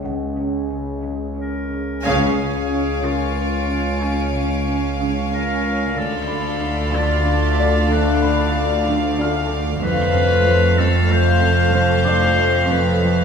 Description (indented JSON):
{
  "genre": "cinematic, suspense film score",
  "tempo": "93 BPM",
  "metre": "3/4",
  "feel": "straight",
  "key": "unclear",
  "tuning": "A4 = 442 Hz",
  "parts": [
    { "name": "glass harmonica", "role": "sustained chords", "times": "0.0-13.2 s", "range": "Db4 to F5", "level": "-30 LUFS", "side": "equal", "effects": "none" },
    { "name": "rich symphonic cello section", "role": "riff", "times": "0.0-13.2 s", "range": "F2 to D4", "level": "-26 LUFS", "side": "equal", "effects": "none" },
    { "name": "rich symphonic double bass section", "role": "bass", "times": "0.0-13.2 s", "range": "F1 to D2", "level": "-24 LUFS", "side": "right 2 dB", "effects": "none" },
    { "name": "warm symphonic cello section", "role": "bass", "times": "0.0-13.2 s", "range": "Db2 to Db3", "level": "-24 LUFS", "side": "right 3 dB", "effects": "none" },
    { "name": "analog drone", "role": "drone", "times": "0.0-13.2 s", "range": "Db2 to F2", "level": "-26 LUFS", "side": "equal", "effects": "chorus" },
    { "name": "felt-muted upright piano", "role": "texture", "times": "0.0-13.2 s", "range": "D4 to F6", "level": "-32 LUFS", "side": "left 2 dB", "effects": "none" },
    { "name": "bright clarinet", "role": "second line", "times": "1.4-13.2 s", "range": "Db4 to C5", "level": "-22 LUFS", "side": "left 3 dB", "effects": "none" },
    { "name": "warm symphonic violin section", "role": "melody", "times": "2.0-13.2 s", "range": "F5 to Ab5", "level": "-28 LUFS", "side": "left 3 dB", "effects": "none" },
    { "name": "warm symphonic violin section", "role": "second line", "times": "2.0-13.2 s", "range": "C5 to F5", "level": "-27 LUFS", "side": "left 4 dB", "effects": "none" },
    { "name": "rich studio viola section", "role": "accompaniment", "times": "2.0-13.2 s", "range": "A3 to Db4", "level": "-28 LUFS", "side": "equal", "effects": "none" },
    { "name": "rich studio violin section", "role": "texture", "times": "2.0-13.2 s", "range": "Db5 to D7", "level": "-32 LUFS", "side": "left 2 dB", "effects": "none" }
  ],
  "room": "wet recital hall reverb, RT60 1.3 s",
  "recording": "recorded in a church or concert hall",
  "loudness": "-16 LUFS",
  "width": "side -6 dB against mid",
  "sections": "0.0-2.0 A section; 2.0-13.2 B section",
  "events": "band accent 2.0-2.7",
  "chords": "0.0 Db5; 2.0 Db; 6.0 Dm; 9.8 F"
}